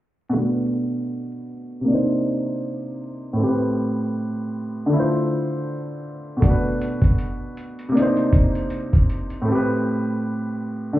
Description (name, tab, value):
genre	lo-fi hip hop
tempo	79 BPM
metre	4/4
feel	swing 58% on 16ths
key	B phrygian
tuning	A4 = 441 Hz
part	warm upright piano	accompaniment	0.3-11.0 s	A2 to C5	-21 LUFS	equal	low-pass filter
part	lo-fi sampler-style drum kit	drums	6.4-9.5 s	hi-hat, kick drum	-17 LUFS	equal	none
room	moderate spring reverb, RT60 2.3 s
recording	heard muffled through a wall, club reverb, vinyl crackle, EQ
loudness	-20 LUFS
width	side -15 dB against mid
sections	0.3-11.0 A section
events	filter sweep on upright piano 0.3-11.0; break 9.5-11.0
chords	0.3 Bm7; 1.9 Cm7; 3.4 Am7; 4.9 Dm7; 6.4 Bm7; 7.9 Cm7; 9.5 Am7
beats	| 0.35 1.11 1.87 2.63 | 3.39 4.14 4.91 5.66 | 6.42 7.18 7.94 8.70 | 9.46 10.22 10.98